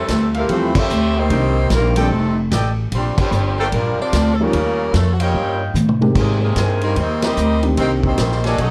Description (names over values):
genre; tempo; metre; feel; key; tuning
jazz, big band swing; 148 BPM; 4/4; swing 64% on 8ths; F major; A4 = 441 Hz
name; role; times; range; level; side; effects
warm saxophone section; melody; 0.0-8.7 s; Eb3 to E5; -24 LUFS; equal; plate reverb
muted trombone section; second line; 0.0-8.7 s; G2 to E4; -30 LUFS; equal; none
upright bass; bass; 0.0-8.7 s; F1 to A2; -21 LUFS; equal; none
vintage drum kit; drums; 0.1-8.7 s; crash cymbal, hi-hat, kick drum, ride cymbal, snare drum, toms; -26 LUFS; equal; none
mellow trumpet section; stabs; 0.4-8.7 s; G4 to Ab5; -28 LUFS; equal; none
warm concert grand piano; accompaniment; 0.5-8.2 s; Eb3 to G4; -24 LUFS; equal; none
room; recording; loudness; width
light reverb; dark, warm production; -17 LUFS; mono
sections
0.0-8.7 A section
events
band accent 0.7, 3.1, 7.2; drum fill 5.8-6.2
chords
0.0 Fmaj9; 1.3 Cm7; 2.1 F13; 2.9 Bb69; 4.5 Eb9; 6.2 Abmaj9; 7.8 Cm7